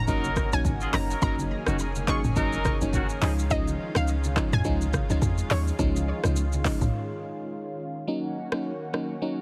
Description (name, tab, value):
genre	afrobeats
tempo	105 BPM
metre	4/4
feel	swing 58% on 16ths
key	unclear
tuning	A4 = 440 Hz
part	analog pluck	melody	0.0-7.5 s	Db5 to Db6	-36 LUFS	equal	chorus, digital delay
part	lush unison pad	sustained chords	0.0-9.4 s	Eb3 to Ab4	-38 LUFS	equal	chorus
part	deep log drum bass	bass	0.0-6.9 s	F1 to F2	-30 LUFS	equal	none
part	clear horn section	second line	0.1-3.3 s	Eb3 to Bb4	-35 LUFS	equal	digital delay
part	FM electric piano	accompaniment	0.1-9.4 s	F3 to Eb4	-34 LUFS	equal	chorus
part	afro-pop drum kit	drums	0.1-9.1 s	handclaps, hi-hat, kick drum, rim click, shaker, toms	-31 LUFS	equal	none
part	congas	percussion	0.1-6.8 s	none	-38 LUFS	equal	none
room	little or no reverb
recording	heavily compressed radio sound, multiband compression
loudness	-27 LUFS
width	mono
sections	0.0-8.1 A section; 8.1-9.4 B section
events	break 6.9-8.1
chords	0.0 Gb6; 3.2 Dbadd9; 8.1 Gb6